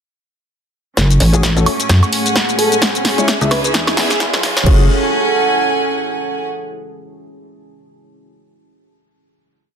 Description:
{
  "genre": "bass house",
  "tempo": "130 BPM",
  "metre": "4/4",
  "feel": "swing 58% on 16ths",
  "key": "F# minor",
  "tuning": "A4 = 439 Hz",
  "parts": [
    { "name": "deep dark ambient pad", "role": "sustained chords", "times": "1.8-4.9 s", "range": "A3 to G#4", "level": "-24 LUFS", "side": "equal", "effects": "chorus, built-in reverb, vintage 12-bit sampler grit, sidechain pumping" },
    { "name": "metallic wobble bass", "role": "bass", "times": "1.0-4.9 s", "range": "F#1 to E2", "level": "-14 LUFS", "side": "equal", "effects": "distortion, chorus, overdrive, sidechain pumping" },
    { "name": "big-room dance drum kit", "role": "drums", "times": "1.0-4.8 s", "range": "crash cymbal, hi-hat, shaker, snare drum, woodblock", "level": "-17 LUFS", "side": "equal", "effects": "small room reverb" },
    { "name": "electronic kick drum", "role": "drums", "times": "1.0-4.8 s", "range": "none", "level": "-14 LUFS", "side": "equal", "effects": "high-pass filter on kick, small room reverb" },
    { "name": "riser", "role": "sound effects", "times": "1.8-4.7 s", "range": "none", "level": "-26 LUFS", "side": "right 2 dB", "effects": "none" },
    { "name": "rich chamber string section", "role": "texture", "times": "1.0-6.5 s", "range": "A3 to G#5", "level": "-19 LUFS", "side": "right 2 dB", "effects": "sidechain pumping" },
    { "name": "dark baby grand piano", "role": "stabs", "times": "1.3-4.8 s", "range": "G#3 to E5", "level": "-22 LUFS", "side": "left 5 dB", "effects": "sidechain pumping, low-pass filter, tape echo" },
    { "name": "metallic FM bass", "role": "bass", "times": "1.9-4.0 s", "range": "C#2 to F#2", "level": "-15 LUFS", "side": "equal", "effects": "tube saturation, sidechain pumping" },
    { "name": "bell-like FM electric piano", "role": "melody", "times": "2.6-4.8 s", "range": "A4 to C#5", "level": "-23 LUFS", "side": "right 1 dB", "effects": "chorus, cassette tape, tape echo" }
  ],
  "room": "moderate digital room reverb, RT60 1.2 s",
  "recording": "dense, heavily limited modern master, high-pass filter",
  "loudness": "-12 LUFS",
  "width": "side -8 dB against mid",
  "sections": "1.0-4.7 build; 4.7-6.5 final chord",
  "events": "build-up 1.0-4.7; drum fill 1.0-4.7; filter sweep 1.0-4.7; riser 1.8-4.7",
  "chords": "1.0 F#madd9; 2.8 C#m; 4.7 F#madd9",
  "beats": "| 0.97 1.43 1.90 2.36 | 2.82 3.28 3.74 4.20 | 4.66 5.13 5.59 6.05"
}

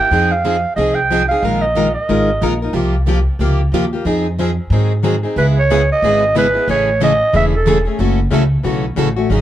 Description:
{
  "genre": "acoustic string swing (jazz manouche)",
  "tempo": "183 BPM",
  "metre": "4/4",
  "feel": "swing 60% on 8ths",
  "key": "F minor, C# minor from 5.4 s",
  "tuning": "A4 = 440 Hz",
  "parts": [
    { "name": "growling clarinet", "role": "melody", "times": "0.0-2.6, 5.4-7.8 s", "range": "A4 to G5", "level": "-15 LUFS", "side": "right 2 dB", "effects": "none" },
    { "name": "picked plugged-in steel-string acoustic guitar", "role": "accompaniment", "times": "0.0-9.4 s", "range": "C3 to Bb4", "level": "-18 LUFS", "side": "left 4 dB", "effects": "none" },
    { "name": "picked plugged-in steel-string acoustic guitar", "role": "accompaniment", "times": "0.1-9.4 s", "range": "C3 to Bb4", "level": "-22 LUFS", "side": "right 6 dB", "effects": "none" },
    { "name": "upright bass", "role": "bass", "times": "0.1-9.4 s", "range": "E1 to Ab2", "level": "-18 LUFS", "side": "equal", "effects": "none" }
  ],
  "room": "moderate spring reverb, RT60 1.2 s",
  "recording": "dark, warm production",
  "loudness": "-13 LUFS",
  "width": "side -12 dB against mid",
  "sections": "0.0-5.4 A section; 5.4-9.4 B section",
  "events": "none",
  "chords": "0.1 Fm7; 1.4 Bb7sus4; 2.7 C7sus4; 4.1 Fm7; 4.7 Ab7; 5.4 C#m9; 6.7 Amaj7; 8.0 F#m7",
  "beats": "| 0.12 0.45 0.78 1.10 | 1.43 1.76 2.09 2.42 | 2.75 3.07 3.40 3.73 | 4.06 4.38 4.71 5.04 | 5.37 5.69 6.02 6.35 | 6.68 7.00 7.33 7.66 | 7.99 8.31 8.64 8.97 | 9.29"
}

